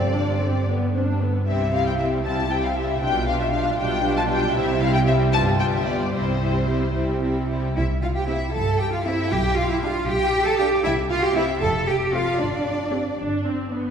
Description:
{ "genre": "quick classical-period movement for string orchestra", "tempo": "77 BPM (dotted quarters)", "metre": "6/8", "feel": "rubato", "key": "C major", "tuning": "A4 = 440 Hz", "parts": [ { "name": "warm studio violin section", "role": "melody", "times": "0.0-13.9 s", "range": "C5 to A5", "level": "-26 LUFS", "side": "left 4 dB", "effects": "none" }, { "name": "rich studio violin section", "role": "second line", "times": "0.0-13.2 s", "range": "B3 to A5", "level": "-27 LUFS", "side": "left 1 dB", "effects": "none" }, { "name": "rich studio viola section", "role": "accompaniment", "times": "0.0-13.9 s", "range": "D3 to A4", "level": "-28 LUFS", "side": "equal", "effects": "none" }, { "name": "clear studio cello section", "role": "bass", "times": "0.0-13.2 s", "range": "G2 to A4", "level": "-24 LUFS", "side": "right 2 dB", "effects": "none" }, { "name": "rich studio double bass section", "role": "bass", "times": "0.0-13.8 s", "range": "F1 to C2", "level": "-26 LUFS", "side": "right 1 dB", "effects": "none" } ], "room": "wet concert hall reverb, RT60 2.4 s", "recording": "heard from further back in the room", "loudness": "-20 LUFS", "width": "side -7 dB against mid", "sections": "0.0-7.8 A section; 7.8-13.9 B section", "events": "none", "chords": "0.0 Gsus4; 0.7 G; 1.5 C; 3.0 G7/B; 4.6 C; 5.3 G7; 6.1 C; 9.3 G7/B; 10.8 C; 11.6 F; 12.4 Gsus4; 13.2 G" }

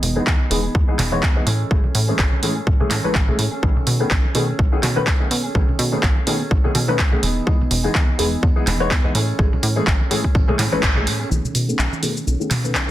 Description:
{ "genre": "filtered disco house", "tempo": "125 BPM", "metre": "4/4", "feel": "swing 56% on 16ths", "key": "B mixolydian", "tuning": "A4 = 440 Hz", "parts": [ { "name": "mellow electric guitar", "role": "riff", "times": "0.0-12.9 s", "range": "D#3 to G#4", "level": "-28 LUFS", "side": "right 2 dB", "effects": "sidechain pumping, low-pass filter" }, { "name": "plucky analog bass", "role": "bass", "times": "0.0-12.9 s", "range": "E1 to B2", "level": "-22 LUFS", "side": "equal", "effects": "tube saturation, sidechain pumping, low-pass filter" }, { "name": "house drum kit", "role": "drums", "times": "0.0-12.9 s", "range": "handclaps, hi-hat, shaker", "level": "-23 LUFS", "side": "right 1 dB", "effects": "overdrive" }, { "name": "tambourine and congas", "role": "percussion", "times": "0.0-12.9 s", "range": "none", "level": "-30 LUFS", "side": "right 2 dB", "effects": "none" }, { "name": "dark grand piano", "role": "accompaniment", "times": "0.2-12.9 s", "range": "D#3 to C#5", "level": "-24 LUFS", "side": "left 2 dB", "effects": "phaser, sidechain pumping, low-pass filter" }, { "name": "electronic kick drum", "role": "drums", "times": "0.3-10.9 s", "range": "none", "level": "-18 LUFS", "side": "equal", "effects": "overdrive" } ], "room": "little or no reverb", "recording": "dense, heavily limited modern master", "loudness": "-16 LUFS", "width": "side -14 dB against mid", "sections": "0.0-11.3 A section; 11.3-12.9 B section", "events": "filter sweep 0.0-11.3, 11.3-12.9; band accent 10.8", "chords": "0.0 Emaj7; 1.5 Amaj7; 3.6 B13; 7.2 Emaj7; 9.1 Amaj7; 11.3 B13" }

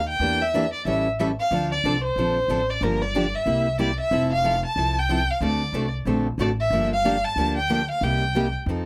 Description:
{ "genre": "acoustic string swing (jazz manouche)", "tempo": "184 BPM", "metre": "4/4", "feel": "swing 60% on 8ths", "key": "D minor", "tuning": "A4 = 437 Hz", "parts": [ { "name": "rich violin", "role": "melody", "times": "0.0-8.5 s", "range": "Bb4 to A5", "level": "-26 LUFS", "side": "equal", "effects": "none" }, { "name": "upright bass", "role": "bass", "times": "0.0-8.9 s", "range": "F1 to F2", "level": "-30 LUFS", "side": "equal", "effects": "none" }, { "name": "picked steel-string acoustic guitar", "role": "accompaniment", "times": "0.2-8.9 s", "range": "C3 to A4", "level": "-28 LUFS", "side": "equal", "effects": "none" } ], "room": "light reverb", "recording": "none", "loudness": "-23 LUFS", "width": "mono", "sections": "0.0-4.1 A section; 4.1-8.9 B section", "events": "none", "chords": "0.2 Em7b5; 0.9 A7; 1.5 Dm7; 2.8 Gm7; 3.5 C7; 4.1 Fmaj7; 5.4 D7b13; 6.7 Gm7; 8.0 Cm7" }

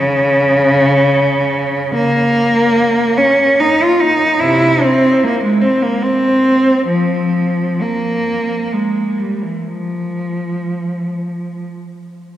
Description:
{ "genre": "classical, free, expressive piece for unaccompanied cello", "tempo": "49-75 BPM", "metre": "3/4", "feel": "rubato", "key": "F minor", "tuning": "A4 = 440 Hz", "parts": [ { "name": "rich cello", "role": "solo", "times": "0.0-11.7 s", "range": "C3 to F4", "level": "-12 LUFS", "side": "equal", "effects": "none" } ], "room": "wet cathedral reverb, RT60 4.6 s", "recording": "heard from further back in the room", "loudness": "-12 LUFS", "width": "side -12 dB against mid", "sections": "0.0-12.4 A section", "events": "none", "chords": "none" }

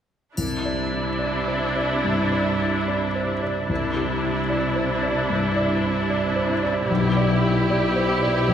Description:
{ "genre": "cinematic, emotional film score for orchestra", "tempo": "74 BPM", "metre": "4/4", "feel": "rubato", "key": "C major", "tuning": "A4 = 440 Hz", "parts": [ { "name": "bright symphonic viola section", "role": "accompaniment", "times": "0.4-8.5 s", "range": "D4 to G4", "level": "-24 LUFS", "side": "left 1 dB", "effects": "none" }, { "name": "dark grand piano", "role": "accompaniment", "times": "0.4-8.5 s", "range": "B1 to D5", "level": "-23 LUFS", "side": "equal", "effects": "none" }, { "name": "rich studio cello section", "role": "bass", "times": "0.4-8.5 s", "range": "B2 to C3", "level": "-28 LUFS", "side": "right 1 dB", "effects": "none" }, { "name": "triangle", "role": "percussion", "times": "0.4-2.0 s", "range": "none", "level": "-35 LUFS", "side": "right 1 dB", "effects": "none" } ], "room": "wet church reverb, RT60 3.2 s", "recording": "recorded in a church or concert hall", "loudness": "-20 LUFS", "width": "side -9 dB against mid", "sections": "0.4-8.5 A section", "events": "none", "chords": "0.4 Cadd9; 6.9 G6/B" }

